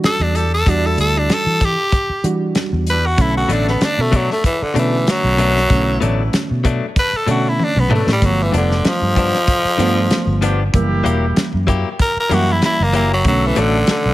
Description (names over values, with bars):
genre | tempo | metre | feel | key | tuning
straight-eighth soul blues | 95 BPM | 4/4 | swing 55% on 16ths | B minor | A4 = 442 Hz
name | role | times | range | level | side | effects
bright reed electric piano | accompaniment | 0.0-14.1 s | D3 to F#4 | -22 LUFS | right 3 dB | overdrive, spring reverb
warm soul drum kit | drums | 0.0-14.0 s | hi-hat, kick drum, snare drum, toms | -19 LUFS | equal | none
raspy tenor saxophone | melody | 0.1-14.1 s | D3 to B4 | -18 LUFS | equal | none
vintage muted fingered electric bass | bass | 0.2-14.1 s | E1 to E3 | -18 LUFS | equal | none
mellow horn section | sustained chords | 0.3-13.9 s | A#3 to B4 | -29 LUFS | left 1 dB | none
direct-recorded clean electric guitar | stabs | 3.5-13.8 s | G2 to G4 | -23 LUFS | left 5 dB | analog delay
room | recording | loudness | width
light reverb, small room ambience | none | -14 LUFS | side -16 dB against mid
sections
0.0-14.1 A section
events
tenor saxophone solo 0.0-14.1; drum fill 7.6-8.2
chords
0.0 Em7; 3.2 Bm7; 8.2 G7; 10.7 F#7b9; 13.3 Bm7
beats
0.03 | 0.66 1.29 1.93 2.56 | 3.19 3.82 4.45 5.08 | 5.71 6.33 6.96 7.59 | 8.22 8.85 9.48 10.11 | 10.74 11.37 11.99 12.62 | 13.25 13.88